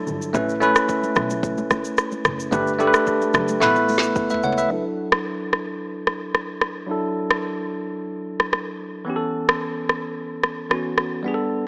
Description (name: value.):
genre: afrobeats.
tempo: 110 BPM.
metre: 4/4.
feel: straight.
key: D major.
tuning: A4 = 440 Hz.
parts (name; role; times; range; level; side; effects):
bell-like tine electric piano; accompaniment; 0.0-11.7 s; E3 to F#5; -22 LUFS; equal; low-pass filter.
dark double bass; bass; 0.1-4.6 s; F#1 to C#2; -31 LUFS; equal; none.
afro-pop drum kit; drums; 0.1-11.1 s; hi-hat, kick drum, rim click, shaker, snare drum, toms; -22 LUFS; equal; none.
congas; percussion; 0.6-4.4 s; none; -34 LUFS; left 1 dB; none.
room: light reverb.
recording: small speaker sound.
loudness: -19 LUFS.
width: side -34 dB against mid.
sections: 0.0-4.7 A section; 4.7-11.7 B section.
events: drum fill 3.6-4.7; filter sweep on tine electric piano 4.7-11.7.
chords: 0.3 Aadd9; 2.5 Gadd9; 3.6 Asus2; 4.7 Dadd9; 9.1 Aadd9.